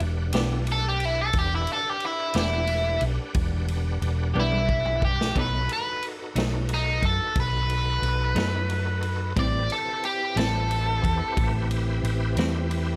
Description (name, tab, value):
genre	slow blues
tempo	60 BPM (dotted quarters)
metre	12/8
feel	straight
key	E minor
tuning	A4 = 440 Hz
part	bright tonewheel organ	sustained chords	0.0-13.0 s	C4 to F#5	-38 LUFS	equal	slow rotary speaker, chorus vibrato
part	hollow-body short-scale fingered electric bass	bass	0.0-13.0 s	E1 to F#2	-28 LUFS	equal	none
part	swinging big-band drum kit	drums	0.0-12.9 s	kick drum, ride cymbal, snare drum, toms	-33 LUFS	equal	none
part	clean electric guitar	accompaniment	0.3-12.6 s	A2 to G4	-33 LUFS	equal	tremolo
part	biting overdriven guitar	melody	0.7-11.7 s	D#4 to D5	-29 LUFS	equal	none
room	little or no reverb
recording	none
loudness	-25 LUFS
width	mono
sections	0.0-13.0 A section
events	overdriven electric guitar solo 0.0-13.0; drum fill 4.4-5.4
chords	0.0 Em7; 5.4 B7; 9.4 Am7